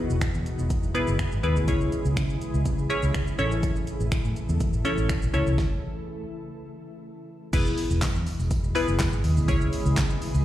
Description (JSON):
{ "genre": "dance-pop", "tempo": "123 BPM", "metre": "4/4", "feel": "straight", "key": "E major", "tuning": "A4 = 440 Hz", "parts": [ { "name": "glassy wavetable pluck", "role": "accompaniment", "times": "0.0-10.0 s", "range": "B3 to C#5", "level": "-28 LUFS", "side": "left 1 dB", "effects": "chorus, sidechain pumping, slapback echo" }, { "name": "shimmering ambient pad", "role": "sustained chords", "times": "0.0-10.4 s", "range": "B2 to A4", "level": "-34 LUFS", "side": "left 1 dB", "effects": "chorus, built-in reverb, sidechain pumping" }, { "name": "vintage muted fingered electric bass", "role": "bass", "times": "0.1-10.4 s", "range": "E1 to C#3", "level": "-25 LUFS", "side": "equal", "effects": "sidechain pumping" }, { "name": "deep house drum kit", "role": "drums", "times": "0.1-10.4 s", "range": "crash cymbal, finger snaps, handclaps, hi-hat, kick drum, shaker, snare drum", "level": "-27 LUFS", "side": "equal", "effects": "none" }, { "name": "tambourine", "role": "percussion", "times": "7.5-10.4 s", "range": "none", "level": "-47 LUFS", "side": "right 4 dB", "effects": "none" } ], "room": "light reverb", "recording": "live gig heard through the venue's PA, recital hall reverb", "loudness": "-23 LUFS", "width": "side -13 dB against mid", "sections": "0.0-7.5 A section; 7.5-10.4 B section", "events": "stop 5.6-7.5", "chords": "0.0 E; 1.7 C#m; 3.4 A; 5.6 N.C.; 7.5 E; 9.5 C#m", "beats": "0.22 0.70 1.19 | 1.68 2.17 2.65 3.14 | 3.63 4.12 4.61 5.09 | 5.58 6.07 6.56 7.05 | 7.53 8.02 8.51 9.00 | 9.48 9.97" }